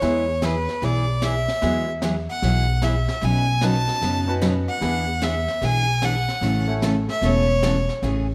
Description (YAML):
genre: country, western swing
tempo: 150 BPM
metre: 4/4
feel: swing 66% on 8ths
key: A major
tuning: A4 = 437 Hz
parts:
  - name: clear fiddle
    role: melody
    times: 0.0-7.9 s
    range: B4 to A5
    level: -27 LUFS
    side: equal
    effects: none
  - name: bright upright piano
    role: accompaniment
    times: 0.0-7.2 s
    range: G#3 to C#5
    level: -34 LUFS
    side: equal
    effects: none
  - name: picked steel-string acoustic guitar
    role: accompaniment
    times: 0.0-8.3 s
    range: B2 to B4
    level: -28 LUFS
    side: equal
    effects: none
  - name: upright bass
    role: bass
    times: 0.0-8.3 s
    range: E1 to F#2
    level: -26 LUFS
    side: equal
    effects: none
  - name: vintage brush drum kit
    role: drums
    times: 0.0-8.3 s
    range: brushed snare drum, hi-hat, snare drum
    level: -35 LUFS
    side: equal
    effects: none
room: light reverb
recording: none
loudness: -22 LUFS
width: mono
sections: 0.0-8.0 A section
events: fiddle solo 0.0-8.0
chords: 0.0 E; 1.6 Eadd9; 3.2 Badd9; 4.8 E7; 6.4 A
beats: | 0.02 0.42 0.82 1.22 | 1.62 2.02 2.42 2.82 | 3.22 3.62 4.02 4.42 | 4.82 5.22 5.62 6.03 | 6.43 6.83 7.23 7.63 | 8.03